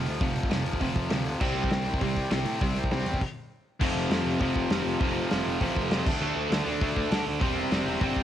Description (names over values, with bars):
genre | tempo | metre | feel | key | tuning
punk rock | 200 BPM | 4/4 | straight | unclear | A4 = 440 Hz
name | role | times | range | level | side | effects
cranked stack guitar | riff | 0.0-8.2 s | F2 to D4 | -32 LUFS | right 6 dB | overdrive
distorted electric guitar | riff | 0.0-8.2 s | F2 to D4 | -34 LUFS | left 8 dB | distortion
distorted electric guitar | riff | 0.0-8.2 s | F2 to D4 | -31 LUFS | left 1 dB | overdrive
fuzz picked electric bass | bass | 0.0-8.2 s | E1 to A2 | -34 LUFS | equal | overdrive
loose indie drum kit | drums | 0.1-8.2 s | crash cymbal, hi-hat, kick drum, snare drum | -30 LUFS | equal | none
room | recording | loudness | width
small room ambience | home recording on cassette | -25 LUFS | side -11 dB against mid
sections
0.0-3.8 A section; 3.8-8.2 B section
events
stop 3.2-3.8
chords
0.0 F5; 1.4 C5; 3.8 F5; 6.1 D5; 7.4 C/E